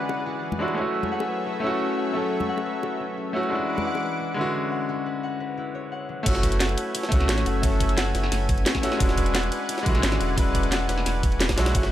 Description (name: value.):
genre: liquid drum and bass.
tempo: 175 BPM.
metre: 4/4.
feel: straight.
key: F# minor.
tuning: A4 = 438 Hz.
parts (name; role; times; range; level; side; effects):
bright grand piano; accompaniment; 0.0-11.9 s; D3 to B4; -28 LUFS; right 1 dB; low-pass filter, tape echo.
lush unison pad; sustained chords; 0.0-11.9 s; E3 to D6; -32 LUFS; right 1 dB; chorus, sidechain pumping.
concert harp; arpeggios; 0.0-11.9 s; F#3 to F#5; -31 LUFS; left 6 dB; tape echo.
bongos and congas; percussion; 0.1-4.0 s; none; -33 LUFS; left 4 dB; none.
warm sub bass; bass; 6.3-11.9 s; E1 to C#2; -25 LUFS; equal; none.
drum and bass drum kit; drums; 6.3-11.8 s; crash cymbal, hi-hat, snare drum; -28 LUFS; equal; low-pass filter on hats, low-pass filter on cymbals, low-pass filter on snare, low-pass filter on room.
electronic kick drum; drums; 6.3-11.8 s; none; -24 LUFS; right 1 dB; none.
jungle sampler-style drum kit; drums; 6.3-11.9 s; ride cymbal, snare drum; -32 LUFS; right 1 dB; high-pass filter on cymbals, high-pass filter on snare.
room: light reverb.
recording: none.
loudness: -22 LUFS.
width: side -12 dB against mid.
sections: 0.0-6.3 A section; 6.3-11.9 B section.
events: break 4.9-6.3; drop 6.3-11.9.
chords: 0.0 E9; 0.8 F#m7; 3.5 E9; 6.3 F#m7; 9.0 E9.